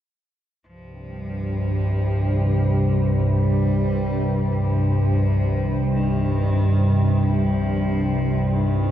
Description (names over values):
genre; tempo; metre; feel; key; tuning
dark ambient drone; 46 BPM; 4/4; straight; C minor; A4 = 440 Hz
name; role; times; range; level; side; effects
organ-like drone; drone; 1.0-8.9 s; C2 to G2; -19 LUFS; equal; ensemble chorus, built-in reverb
rich cello; melody; 0.7-8.9 s; Eb3 to G3; -35 LUFS; equal; diffuse ambient delay
quartz singing bowl; arpeggios; 1.7-8.9 s; none; barely audible; none; none
room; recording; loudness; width
wet huge ambient reverb, RT60 8.2 s; worn, warbling old tape, cassette tape, warbly pitch drift; -18 LUFS; side -11 dB against mid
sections
0.7-8.9 A section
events
fade-in on cello 0.7-8.9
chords
0.7 Cm